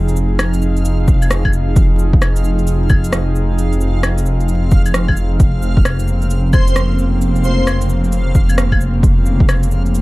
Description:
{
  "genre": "future garage",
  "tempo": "132 BPM",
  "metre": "4/4",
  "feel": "swing 63% on 16ths",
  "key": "F minor",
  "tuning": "A4 = 440 Hz",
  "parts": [
    { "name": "warbly tape-like pad", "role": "sustained chords", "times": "0.0-10.0 s", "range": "Db3 to Ab4", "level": "-22 LUFS", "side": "equal", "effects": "chorus, built-in reverb, sidechain pumping" },
    { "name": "dark detuned saw bass", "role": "bass", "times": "0.0-10.0 s", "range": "F1", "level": "-16 LUFS", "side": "equal", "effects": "sidechain pumping" },
    { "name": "backwards swelling texture", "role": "texture", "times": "0.0-10.0 s", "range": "F5", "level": "-32 LUFS", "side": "left 1 dB", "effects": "built-in reverb" },
    { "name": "electronic shaker, cabasa, rim click and claves", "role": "drums", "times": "0.1-10.0 s", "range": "none", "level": "-21 LUFS", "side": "equal", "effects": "none" },
    { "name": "electronic kick drum", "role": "drums", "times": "1.1-9.5 s", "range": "none", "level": "-13 LUFS", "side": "equal", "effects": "none" },
    { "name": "airy dreamy lead", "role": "melody", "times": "6.5-7.7 s", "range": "C5", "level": "-25 LUFS", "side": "left 1 dB", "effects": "chorus, analog delay" }
  ],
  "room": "digital ambience",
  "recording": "vinyl crackle",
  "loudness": "-12 LUFS",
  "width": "side -20 dB against mid",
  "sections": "0.0-10.0 A section",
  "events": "none",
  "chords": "0.0 Fm7; 5.4 Bbmadd9/F"
}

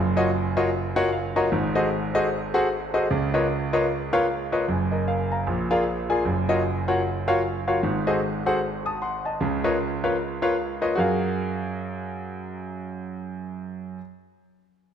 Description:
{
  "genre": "gospel",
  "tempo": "152 BPM",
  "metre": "4/4",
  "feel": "swing 60% on 8ths",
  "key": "F# major",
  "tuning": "A4 = 439 Hz",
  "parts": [
    { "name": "clear concert grand piano", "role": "accompaniment", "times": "0.0-14.0 s", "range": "F#1 to D#6", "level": "-22 LUFS", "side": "equal", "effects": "none" }
  ],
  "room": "moderate scoring stage reverb, RT60 1.9 s",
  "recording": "none",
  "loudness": "-22 LUFS",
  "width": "side -8 dB against mid",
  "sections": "0.0-4.7 A section; 4.7-11.0 B section; 11.0-14.1 C section",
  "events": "grand piano fill 0.7-1.5",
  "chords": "0.0 D#m9/F#; 1.5 G#7b9; 3.1 C#13; 4.7 N.C.; 5.5 A#7; 6.3 D#m9/F# (rootless); 7.8 G#7b9; 9.4 C#13; 11.0 F#maj9"
}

